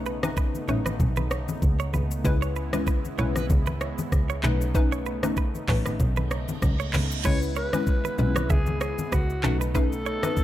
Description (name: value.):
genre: afrobeats.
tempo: 96 BPM.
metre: 4/4.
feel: swing 55% on 16ths.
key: C# minor.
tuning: A4 = 440 Hz.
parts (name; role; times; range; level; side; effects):
hollow square pluck; accompaniment; 0.0-10.4 s; G#3 to B4; -30 LUFS; left 3 dB; chorus.
warm analog pad; sustained chords; 0.0-10.4 s; C#3 to E4; -36 LUFS; right 1 dB; chorus, tremolo.
warm double bass; bass; 0.0-10.1 s; A1 to C#2; -27 LUFS; equal; none.
direct-recorded clean electric guitar; riff; 0.1-10.2 s; A4 to E5; -35 LUFS; right 9 dB; ping-pong delay.
afro-pop drum kit; drums; 0.1-10.4 s; crash cymbal, handclaps, hi-hat, kick drum, rim click, shaker; -26 LUFS; equal; none.
congas; percussion; 0.2-10.4 s; none; -33 LUFS; left 2 dB; none.
reverse cymbal; sound effects; 6.5-7.2 s; none; -37 LUFS; right 7 dB; none.
growling alto saxophone; melody; 7.3-10.4 s; F#4 to C#5; -31 LUFS; equal; ping-pong delay.
room: digital ambience.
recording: none.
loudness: -23 LUFS.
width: side -13 dB against mid.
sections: 0.0-7.2 A section; 7.2-10.4 B section.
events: reverse cymbal 6.5-7.2.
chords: 0.0 B9; 2.2 C#m7; 4.4 B9; 7.2 C#m7; 9.4 B9.